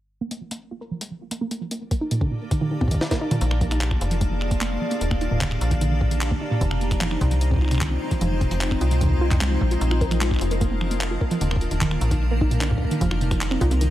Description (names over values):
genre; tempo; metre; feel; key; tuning
IDM; 150 BPM; 4/4; straight; unclear; A4 = 440 Hz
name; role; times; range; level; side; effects
warbly dusty pluck; arpeggios; 0.2-13.9 s; F2 to Bb4; -27 LUFS; right 2 dB; chorus, tape echo
jungle sampler-style drum kit; drums; 0.3-13.9 s; finger snaps, handclaps, hi-hat, snare drum, toms; -30 LUFS; equal; dub echo
icy glass pad; sustained chords; 2.3-13.9 s; G3 to D5; -28 LUFS; equal; chorus, built-in reverb
electronic kick drum; drums; 1.9-13.7 s; none; -24 LUFS; equal; overdrive
metallic FM bass; bass; 3.4-13.9 s; Eb1 to C2; -23 LUFS; equal; none
room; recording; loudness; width
light reverb; echo-heavy mix, faint mains hum; -20 LUFS; side -14 dB against mid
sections
0.2-3.4 A section; 3.4-13.9 B section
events
filter sweep on synth pluck 0.2-3.4; drum fill 2.8-3.4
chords
0.2 Bb5; 1.8 Ebmaj7; 3.4 Bb7; 5.0 Ebmaj7; 6.6 Fm7; 9.8 Bb7; 11.4 Ebmaj7; 13.0 Fm7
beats
| 0.21 0.61 1.01 1.41 | 1.81 2.21 2.61 3.01 | 3.41 3.81 4.21 4.61 | 5.01 5.41 5.81 6.21 | 6.61 7.01 7.41 7.81 | 8.21 8.61 9.01 9.41 | 9.81 10.21 10.61 11.01 | 11.41 11.81 12.21 12.61 | 13.01 13.41 13.81